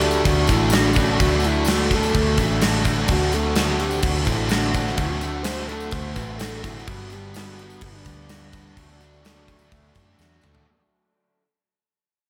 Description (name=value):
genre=rock, shoegaze and dream pop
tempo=127 BPM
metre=4/4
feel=straight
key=D major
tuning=A4 = 440 Hz
part: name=breathy flute-like synth lead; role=melody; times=0.0-10.2 s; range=C#4 to C5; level=-30 LUFS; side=equal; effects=chorus, tremolo, digital delay
part: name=string machine, cellos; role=sustained chords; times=0.0-10.7 s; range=G3 to C#6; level=-38 LUFS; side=equal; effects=none
part: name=twangy electric guitar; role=arpeggios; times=0.0-11.2 s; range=A3 to F#4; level=-35 LUFS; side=equal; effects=analog chorus, digital delay
part: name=biting overdriven guitar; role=riff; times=0.0-10.7 s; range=G2 to F#4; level=-30 LUFS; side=equal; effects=reverse reverb
part: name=thick fuzz guitar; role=riff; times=0.0-10.7 s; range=G2 to D4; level=-30 LUFS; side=equal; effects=distortion, subtle chorus
part: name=vintage muted fingered electric bass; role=bass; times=0.0-10.7 s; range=G1 to F#2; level=-28 LUFS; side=equal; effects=none
part: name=gated 80s drum kit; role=drums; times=0.0-10.7 s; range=crash cymbal, kick drum, snare drum, toms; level=-26 LUFS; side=equal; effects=none
part: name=tambourine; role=percussion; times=0.1-10.6 s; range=none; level=-40 LUFS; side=equal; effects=none
room=light reverb, studio reverb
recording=none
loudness=-21 LUFS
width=mono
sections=0.0-10.7 A section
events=fade-out 0.0-10.7; drum fill 10.2-10.7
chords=0.0 D; 3.1 D7; 6.9 Gmaj7; 8.8 Dmaj7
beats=0.25 0.72 | 1.20 1.67 2.14 2.62 | 3.09 3.56 4.04 4.51 | 4.98 5.46 5.93 6.40 | 6.88 7.35 7.83 8.30 | 8.77 9.25 9.72 10.19